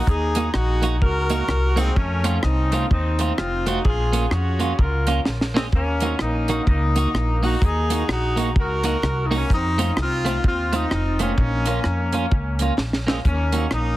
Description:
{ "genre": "ska", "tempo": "128 BPM", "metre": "4/4", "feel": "swing 60% on 8ths", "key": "Eb dorian", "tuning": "A4 = 440 Hz", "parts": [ { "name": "warm horn section", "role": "melody", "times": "0.0-14.0 s", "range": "Ab3 to Bb4", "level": "-24 LUFS", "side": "left 1 dB", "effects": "tape echo, plate reverb" }, { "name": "upright bass", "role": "bass", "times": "0.1-14.0 s", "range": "F1 to F2", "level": "-23 LUFS", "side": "equal", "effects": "none" }, { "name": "deep reggae drum kit", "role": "drums", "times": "0.1-13.8 s", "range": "hi-hat, kick drum, rim click, snare drum", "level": "-22 LUFS", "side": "equal", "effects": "none" }, { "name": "clean electric guitar", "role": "accompaniment", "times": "0.4-13.7 s", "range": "A3 to Gb4", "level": "-27 LUFS", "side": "right 3 dB", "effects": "tremolo, tape echo, plate reverb" } ], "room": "light reverb", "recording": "heavily compressed radio sound, multiband compression", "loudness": "-18 LUFS", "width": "side -16 dB against mid", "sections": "0.0-14.0 A section", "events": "drum fill 5.3-5.7, 12.8-13.3", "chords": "0.0 Ebm; 2.0 F; 3.8 Bbm; 5.7 Ebm; 9.5 F; 11.4 Bbm; 13.3 Ebm" }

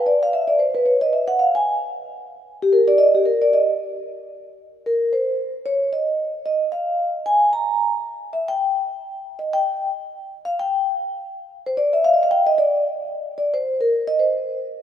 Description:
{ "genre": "jazz", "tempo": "225 BPM", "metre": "4/4", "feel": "swing 60% on 8ths", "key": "C minor", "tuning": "A4 = 440 Hz", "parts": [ { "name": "vibraphone with soft mallets", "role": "solo", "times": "0.0-14.6 s", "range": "G4 to Bb5", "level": "-18 LUFS", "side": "equal", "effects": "none" } ], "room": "wet lush hall reverb, RT60 2.4 s", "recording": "rough home demo mix", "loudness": "-18 LUFS", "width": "side -10 dB against mid", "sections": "0.0-4.6 A section; 4.6-13.1 B section; 13.1-14.8 C section", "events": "vibraphone solo 13.1-14.8", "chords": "none" }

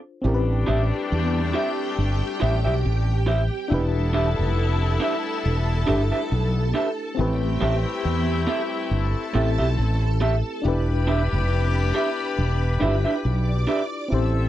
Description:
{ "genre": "reggae", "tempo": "69 BPM", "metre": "4/4", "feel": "swing 56% on 16ths", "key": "A minor", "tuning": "A4 = 440 Hz", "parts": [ { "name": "FM electric piano with auto-pan", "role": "accompaniment", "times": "0.0-14.5 s", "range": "C4 to C5", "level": "-30 LUFS", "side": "left 2 dB", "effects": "none" }, { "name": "clear horn section", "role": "second line", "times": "0.2-14.5 s", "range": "G3 to A4", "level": "-30 LUFS", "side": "left 6 dB", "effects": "none" }, { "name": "string machine, full ensemble", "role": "second line", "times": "0.2-14.5 s", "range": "G4 to E6", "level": "-31 LUFS", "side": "right 1 dB", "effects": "ensemble chorus" }, { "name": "fretless electric bass", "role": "bass", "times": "0.2-14.5 s", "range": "E1 to E2", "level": "-22 LUFS", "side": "equal", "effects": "ensemble chorus" }, { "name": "electric guitar through a small old amp", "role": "stabs", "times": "0.7-13.8 s", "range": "C4 to E5", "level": "-24 LUFS", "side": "right 3 dB", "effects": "none" } ], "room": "little or no reverb", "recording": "dry, close 1970s-style studio recording", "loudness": "-20 LUFS", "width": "side -13 dB against mid", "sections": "0.2-14.5 A section", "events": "none", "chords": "0.2 Am7; 3.7 Em7; 7.2 Am7; 10.6 Em7" }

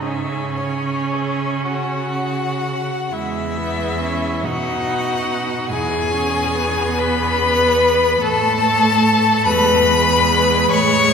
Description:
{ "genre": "classical, slow romantic movement for string quartet", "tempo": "35-49 BPM (dotted quarters)", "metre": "6/8", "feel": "rubato", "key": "C# minor, E major from 3.1 s", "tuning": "A4 = 441 Hz", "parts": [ { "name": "clear violin", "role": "melody", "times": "0.0-11.1 s", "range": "E5 to C#6", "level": "-20 LUFS", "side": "left 4 dB", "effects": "none" }, { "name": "rich violin", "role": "second line", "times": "0.0-11.1 s", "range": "E4 to C#5", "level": "-20 LUFS", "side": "left 2 dB", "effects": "none" }, { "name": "clear viola", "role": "accompaniment", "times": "0.0-11.1 s", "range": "G#3 to E4", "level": "-23 LUFS", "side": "right 3 dB", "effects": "none" }, { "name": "warm cello", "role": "bass", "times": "0.0-11.1 s", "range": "E2 to C#3", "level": "-23 LUFS", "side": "right 2 dB", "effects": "none" } ], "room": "wet church reverb, RT60 3.4 s", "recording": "minimal, uncompressed stereo recording", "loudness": "-16 LUFS", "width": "side -6 dB against mid", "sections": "0.0-3.1 A section; 3.1-11.1 B section", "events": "none", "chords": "0.0 C#m; 3.1 E; 4.4 B; 5.7 E; 8.2 N.C.; 9.5 E" }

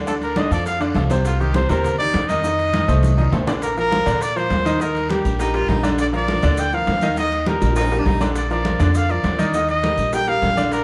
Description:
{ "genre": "latin, salsa", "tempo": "203 BPM", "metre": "4/4", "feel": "straight", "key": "Bb major", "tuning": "A4 = 440 Hz", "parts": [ { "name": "bright baby grand piano", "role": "accompaniment", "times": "0.0-10.8 s", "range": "C3 to Eb5", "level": "-25 LUFS", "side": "equal", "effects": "none" }, { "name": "upright bass", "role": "bass", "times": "0.0-10.8 s", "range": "Bb1 to Bb2", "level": "-24 LUFS", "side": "equal", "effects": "none" }, { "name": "warm trumpet", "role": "melody", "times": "0.1-10.8 s", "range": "F4 to G5", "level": "-24 LUFS", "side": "equal", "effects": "none" }, { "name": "bongos", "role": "percussion", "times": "0.1-10.8 s", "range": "none", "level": "-37 LUFS", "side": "equal", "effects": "none" }, { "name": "congas", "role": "percussion", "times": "0.1-10.8 s", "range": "none", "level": "-29 LUFS", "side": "equal", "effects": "none" }, { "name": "guiro", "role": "percussion", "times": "0.1-10.8 s", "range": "none", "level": "-43 LUFS", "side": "equal", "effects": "none" }, { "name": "maracas", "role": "percussion", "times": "0.1-10.8 s", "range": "none", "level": "-44 LUFS", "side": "equal", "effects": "none" }, { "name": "timbales", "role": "percussion", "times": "0.2-10.8 s", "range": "none", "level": "-36 LUFS", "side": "equal", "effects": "none" }, { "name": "bright baritone saxophone", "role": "second line", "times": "5.4-8.3 s", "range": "D4 to F4", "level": "-28 LUFS", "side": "equal", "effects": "none" } ], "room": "moderate large studio reverb, RT60 1.2 s", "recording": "band playing live in one room", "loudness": "-19 LUFS", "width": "mono", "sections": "0.0-3.6 A section; 3.6-10.8 B section", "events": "drum fill 2.4-3.6, 7.6-8.4", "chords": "0.1 Csus4; 1.3 Cm7; 2.4 F7; 3.6 Bb; 4.8 Eb; 6.0 Bb; 7.2 Eb; 8.4 Bb; 9.5 Eb" }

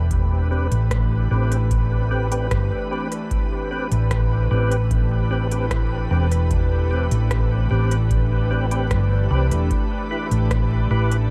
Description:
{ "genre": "ambient dub", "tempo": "75 BPM", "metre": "4/4", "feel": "straight", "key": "A minor", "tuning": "A4 = 440 Hz", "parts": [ { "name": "soft additive organ-like pad", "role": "sustained chords", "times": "0.0-11.3 s", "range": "E3 to B4", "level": "-30 LUFS", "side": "equal", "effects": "ensemble chorus, built-in reverb" }, { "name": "hollow-body short-scale fingered electric bass", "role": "bass", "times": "0.0-11.3 s", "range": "E1 to C2", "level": "-22 LUFS", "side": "equal", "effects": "none" }, { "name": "electronic kick drum", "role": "drums", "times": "0.1-10.7 s", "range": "none", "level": "-28 LUFS", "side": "equal", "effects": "none" }, { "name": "organic electronic drum kit", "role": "drums", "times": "0.1-11.3 s", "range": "hi-hat, rim click", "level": "-36 LUFS", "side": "equal", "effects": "dub echo" }, { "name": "percussive tonewheel organ", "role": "stabs", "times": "0.5-11.2 s", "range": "C4 to B4", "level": "-32 LUFS", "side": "equal", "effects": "overdrive, chorus vibrato, slow rotary speaker, low-pass filter, dub echo" } ], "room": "light reverb", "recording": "vinyl crackle", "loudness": "-21 LUFS", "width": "mono", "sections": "0.0-11.3 A section", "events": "filter sweep on tonewheel organ 0.0-11.3", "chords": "0.0 Am9; 9.7 Em" }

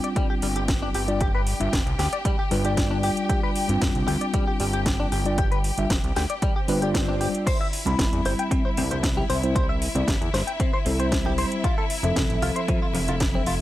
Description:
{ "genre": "nu-disco, nu disco", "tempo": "115 BPM", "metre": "4/4", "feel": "straight", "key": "G mixolydian", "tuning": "A4 = 442 Hz", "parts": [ { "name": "mellow tine electric piano", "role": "accompaniment", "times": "0.0-13.6 s", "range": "F3 to B5", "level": "-28 LUFS", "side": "equal", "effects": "medium stereo tremolo, sidechain pumping, analog delay" }, { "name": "clear studio string section", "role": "sustained chords", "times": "0.0-13.6 s", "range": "E4 to G5", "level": "-32 LUFS", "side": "left 2 dB", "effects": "sidechain pumping" }, { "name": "direct-recorded clean electric guitar", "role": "riff", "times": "0.0-13.5 s", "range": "F3 to G5", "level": "-30 LUFS", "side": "left 2 dB", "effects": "analog chorus, analog delay" }, { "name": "house drum kit", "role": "drums", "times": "0.0-13.6 s", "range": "crash cymbal, hi-hat, snare drum", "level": "-30 LUFS", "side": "equal", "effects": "overdrive" }, { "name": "electronic kick drum", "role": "drums", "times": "0.2-13.3 s", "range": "none", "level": "-26 LUFS", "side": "equal", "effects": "overdrive" }, { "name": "fat analog bass", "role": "bass", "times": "0.4-13.6 s", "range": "F1 to E2", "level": "-27 LUFS", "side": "equal", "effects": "none" }, { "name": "swell", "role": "sound effects", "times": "6.6-7.5 s", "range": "none", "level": "-37 LUFS", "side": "right 4 dB", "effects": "none" }, { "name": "congas", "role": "percussion", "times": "7.9-13.4 s", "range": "none", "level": "-33 LUFS", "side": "right 4 dB", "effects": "none" } ], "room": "little or no reverb", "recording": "none", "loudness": "-21 LUFS", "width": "side -14 dB against mid", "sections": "0.0-13.6 A section", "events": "swell 6.6-7.5", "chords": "0.0 G7sus4; 7.5 Cmaj7; 11.6 Fmaj7" }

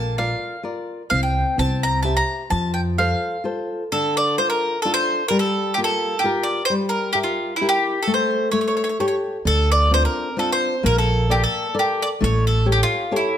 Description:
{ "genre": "italian folk, Italian serenade", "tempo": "130 BPM", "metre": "3/4", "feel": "straight", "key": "F major, D minor from 3.9 s", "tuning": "A4 = 441 Hz", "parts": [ { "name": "bowl-back mandolin", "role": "melody", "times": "0.0-13.4 s", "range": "E4 to Bb5", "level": "-21 LUFS", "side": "equal", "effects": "none" }, { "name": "flamenco guitar", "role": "accompaniment", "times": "0.0-13.4 s", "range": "D3 to E5", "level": "-24 LUFS", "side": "left 2 dB", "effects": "none" }, { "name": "upright bass", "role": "bass", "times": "0.0-3.1, 9.5-12.8 s", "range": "A1 to F2", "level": "-20 LUFS", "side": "right 1 dB", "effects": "none" } ], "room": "moderate recital hall reverb, RT60 1.3 s", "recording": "close, detailed microphones", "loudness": "-18 LUFS", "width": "side -10 dB against mid", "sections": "0.0-3.9 A section; 3.9-13.4 B section", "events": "none", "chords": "0.0 Bb; 1.1 C5; 1.6 C; 2.5 F; 3.9 Dm; 5.3 Gm7; 6.7 Edim/G; 8.1 N.C.; 8.5 A7; 9.4 Dm7; 10.8 Bbmaj7; 12.2 A7" }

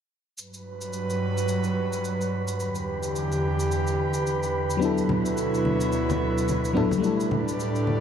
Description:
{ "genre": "sunset chillout", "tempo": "108 BPM", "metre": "4/4", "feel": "swing 58% on 16ths", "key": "unclear", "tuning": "A4 = 442 Hz", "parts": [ { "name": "airy breathy pad", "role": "sustained chords", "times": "0.4-8.0 s", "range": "D2 to B4", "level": "-26 LUFS", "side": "right 1 dB", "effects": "chorus" }, { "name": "cabasa", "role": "drums", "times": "0.4-7.8 s", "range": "none", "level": "-40 LUFS", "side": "equal", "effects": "none" }, { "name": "wind-like tuned noise texture", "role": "texture", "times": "0.7-8.0 s", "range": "B4 to B5", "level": "-32 LUFS", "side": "right 2 dB", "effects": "built-in reverb" }, { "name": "mellow FM electric piano", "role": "accompaniment", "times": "4.8-8.0 s", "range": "F#3 to A4", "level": "-25 LUFS", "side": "left 2 dB", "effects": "chorus, auto-pan, ping-pong delay" }, { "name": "congas", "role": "percussion", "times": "5.1-8.0 s", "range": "none", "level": "-30 LUFS", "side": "left 3 dB", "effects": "none" } ], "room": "moderate lush hall reverb, RT60 1.9 s, studio ambience", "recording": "dark, warm production", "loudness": "-23 LUFS", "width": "side -8 dB against mid", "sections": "0.4-8.0 A section", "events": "none", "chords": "0.4 Gmaj7; 2.6 Em7; 4.8 D69; 7.0 A7sus4" }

